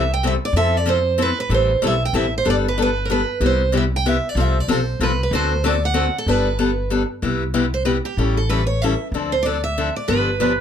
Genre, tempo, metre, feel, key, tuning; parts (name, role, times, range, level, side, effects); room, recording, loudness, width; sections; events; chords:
acoustic string swing (jazz manouche); 189 BPM; 3/4; swing 60% on 8ths; C major; A4 = 440 Hz
picked steel-string acoustic guitar; melody; 0.0-10.6 s; G4 to G5; -22 LUFS; right 4 dB
picked steel-string acoustic guitar; accompaniment; 0.0-10.5 s; C3 to A4; -21 LUFS; left 4 dB
upright bass; bass; 0.0-10.6 s; G1 to F2; -22 LUFS; equal
breathy clarinet; second line; 10.4-10.6 s; B4; -20 LUFS; right 6 dB
light reverb; -17 LUFS; side -8 dB against mid
0.0-7.2 A section; 7.2-10.6 B section
0.0 C6; 0.6 Fmaj7; 1.5 Am7; 2.5 Gadd9; 3.4 Cmaj7; 4.4 F; 5.3 D7; 6.3 Gadd9; 7.2 Cmaj7; 8.2 A7; 9.1 Dm7; 10.1 G7